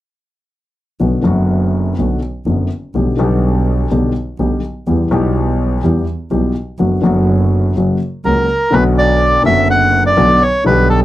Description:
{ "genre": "tango", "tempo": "124 BPM", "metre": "4/4", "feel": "rubato", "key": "B minor", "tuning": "A4 = 441 Hz", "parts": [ { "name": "warm concert grand piano", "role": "accompaniment", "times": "1.0-11.0 s", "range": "F#1 to G4", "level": "-15 LUFS", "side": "left 2 dB", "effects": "none" }, { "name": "rich double bass", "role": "bass", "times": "1.0-11.0 s", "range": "F#1 to E2", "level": "-17 LUFS", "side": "right 2 dB", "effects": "none" }, { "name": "bandoneon", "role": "melody", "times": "8.2-11.0 s", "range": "A4 to F#5", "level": "-12 LUFS", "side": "right 1 dB", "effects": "none" } ], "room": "light reverb", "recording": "dry, close 1970s-style studio recording", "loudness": "-12 LUFS", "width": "side -14 dB against mid", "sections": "1.0-8.7 A section; 8.7-11.0 B section", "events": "none", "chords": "1.0 Bm; 2.9 G/B; 4.9 Em; 6.8 Bm/F#; 7.8 F#; 8.7 Bm", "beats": "| 1.00 1.49 1.98 2.46 | 2.94 3.43 3.91 4.39 | 4.87 5.35 5.83 6.31 | 6.80 7.28 7.76 8.25 | 8.73 9.22 9.70 10.18 | 10.66" }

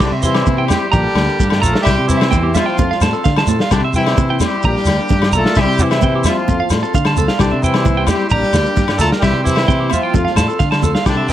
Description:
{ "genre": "highlife guitar band", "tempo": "130 BPM", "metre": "4/4", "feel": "straight", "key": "C mixolydian", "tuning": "A4 = 440 Hz", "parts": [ { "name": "clear horn section", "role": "melody", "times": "0.0-11.3 s", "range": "C3 to A4", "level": "-18 LUFS", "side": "left 1 dB", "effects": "none" }, { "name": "nylon-string guitar", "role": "accompaniment", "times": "0.0-11.3 s", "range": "F3 to Bb4", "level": "-24 LUFS", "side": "left 8 dB", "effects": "none" }, { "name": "overdriven combo organ", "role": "sustained chords", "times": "0.0-11.3 s", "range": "D5 to C6", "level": "-29 LUFS", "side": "equal", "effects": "spring reverb" }, { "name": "clean electric guitar", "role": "arpeggios", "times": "0.0-11.3 s", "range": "G4 to C6", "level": "-21 LUFS", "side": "right 6 dB", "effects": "tremolo, slapback echo" }, { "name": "fingered electric bass", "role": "bass", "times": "0.0-11.3 s", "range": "Bb1 to D3", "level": "-19 LUFS", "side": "equal", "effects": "none" }, { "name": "vintage drum kit", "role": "drums", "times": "0.0-11.2 s", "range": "crash cymbal, kick drum, snare drum", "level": "-18 LUFS", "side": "equal", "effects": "none" }, { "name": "agogo bells", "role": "percussion", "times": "0.0-11.2 s", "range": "none", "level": "-26 LUFS", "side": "left 15 dB", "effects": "none" }, { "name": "congas", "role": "percussion", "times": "0.0-11.1 s", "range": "none", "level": "-26 LUFS", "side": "right 14 dB", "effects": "none" }, { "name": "shekere", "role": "percussion", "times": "0.0-11.3 s", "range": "none", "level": "-20 LUFS", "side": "right 1 dB", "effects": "none" } ], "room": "light reverb", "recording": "none", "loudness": "-12 LUFS", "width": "side -12 dB against mid", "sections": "0.0-11.3 A section", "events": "none", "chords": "0.0 C; 0.9 Bb; 1.9 C; 2.8 F; 3.7 C; 4.6 Bb; 5.6 C; 6.5 F; 7.4 C; 8.3 Bb; 9.2 C; 10.1 F", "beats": "| 0.01 0.48 0.94 1.40 | 1.86 2.33 2.79 3.25 | 3.71 4.17 4.64 5.10 | 5.56 6.02 6.48 6.94 | 7.40 7.86 8.32 8.78 | 9.23 9.69 10.15 10.60 | 11.06" }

